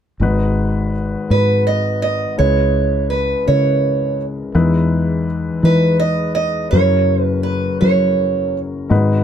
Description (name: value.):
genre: folk.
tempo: 55 BPM (dotted quarters).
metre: 6/8.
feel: straight.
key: G# minor.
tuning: A4 = 440 Hz.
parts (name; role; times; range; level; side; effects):
dark grand piano; accompaniment; 0.2-9.2 s; F#1 to B4; -19 LUFS; left 4 dB; none.
fingered electric bass; bass; 0.2-9.2 s; G#1 to F#3; -18 LUFS; equal; none.
picked old ladder-braced acoustic guitar; melody; 1.3-8.6 s; B4 to D#5; -17 LUFS; right 4 dB; none.
room: light reverb.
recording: close, detailed microphones.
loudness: -14 LUFS.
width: side -9 dB against mid.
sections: 0.2-9.2 A section.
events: none.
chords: 0.2 G#m7; 2.4 C#m7; 4.5 Emaj7; 6.7 F#7.